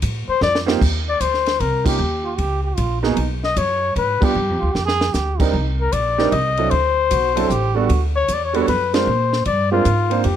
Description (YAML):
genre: jazz, small-group swing and bop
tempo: 152 BPM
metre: 3/4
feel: swing 66% on 8ths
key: Eb major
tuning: A4 = 439 Hz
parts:
  - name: upright bass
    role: bass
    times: 0.0-10.4 s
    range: A1 to Bb2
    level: -22 LUFS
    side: equal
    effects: none
  - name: compact cocktail drum kit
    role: drums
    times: 0.0-10.4 s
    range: crash cymbal, hi-hat, kick drum, ride cymbal, snare drum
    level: -25 LUFS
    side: right 1 dB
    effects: none
  - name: breathy flugelhorn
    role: melody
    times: 0.3-10.4 s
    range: F4 to Eb5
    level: -19 LUFS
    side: left 5 dB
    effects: none
  - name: warm baby grand piano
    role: accompaniment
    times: 0.7-10.2 s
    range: Gb3 to C5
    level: -22 LUFS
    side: right 8 dB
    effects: none
  - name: trombone with metal mute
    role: second line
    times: 2.2-8.0 s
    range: Eb4 to A4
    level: -24 LUFS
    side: right 6 dB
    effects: none
room: light reverb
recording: close, detailed microphones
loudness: -16 LUFS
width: side -10 dB against mid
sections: 0.8-10.3 A section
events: drum fill 0.4-0.8, 4.7-5.1; band accent 1.8, 4.2, 8.9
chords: 0.0 Bbmaj7sus2; 0.8 Eb5; 2.0 Eb7; 3.2 Abm7; 4.4 G5; 5.5 Cm7; 6.7 D7; 7.9 Gmaj7 (rootless); 9.1 Bb7